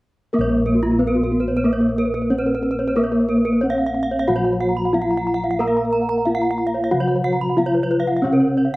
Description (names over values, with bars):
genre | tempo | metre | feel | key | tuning
Balinese gamelan | 91 BPM | 4/4 | straight | Bb pelog | A4 = 440 Hz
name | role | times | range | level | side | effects
gamelan-type bronze metallophone | melody | 0.3-8.8 s | Bb3 to Bb4 | -19 LUFS | equal | none
gamelan-type bronze metallophone | accompaniment | 0.3-8.8 s | C3+50c to Bb3 | -28 LUFS | equal | none
gamelan-type bronze metallophone | arpeggios | 0.3-8.7 s | Gb4-40c to Bb5 | -26 LUFS | left 2 dB | slapback echo
gamelan-type bossed gongs | bass | 0.3-8.8 s | Bb1 to Bb4 | -25 LUFS | equal | none
gamelan-type bronze metallophone | arpeggios | 0.4-8.8 s | F4-45c to Cb6 | -26 LUFS | right 3 dB | slapback echo
room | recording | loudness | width
little or no reverb | recorded outdoors, with no room sound | -17 LUFS | side -19 dB against mid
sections
0.3-8.8 A section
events
none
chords
none